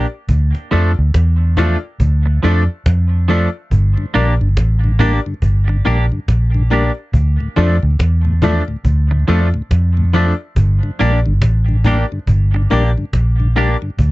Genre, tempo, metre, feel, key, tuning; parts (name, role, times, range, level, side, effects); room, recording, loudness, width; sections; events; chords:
roots reggae; 70 BPM; 4/4; swing 60% on 16ths; G dorian; A4 = 439 Hz
semi-hollow electric guitar; accompaniment; 0.0-13.8 s; F3 to G4; -20 LUFS; right 4 dB; analog chorus, dub echo
bright upright piano; stabs; 0.0-13.7 s; D4 to D5; -21 LUFS; left 8 dB
vintage muted fingered electric bass; bass; 0.0-14.1 s; G1 to F2; -13 LUFS; equal
cajon; drums; 0.3-14.1 s; -18 LUFS; equal
mellow tonewheel organ; accompaniment; 4.0-13.9 s; D2 to D4; -22 LUFS; left 2 dB; slow rotary speaker
little or no reverb; nothing above 7.9 kHz; -13 LUFS; side -19 dB against mid
0.0-14.1 A section
0.3 Dm; 3.7 Gm; 7.1 Dm; 10.6 Gm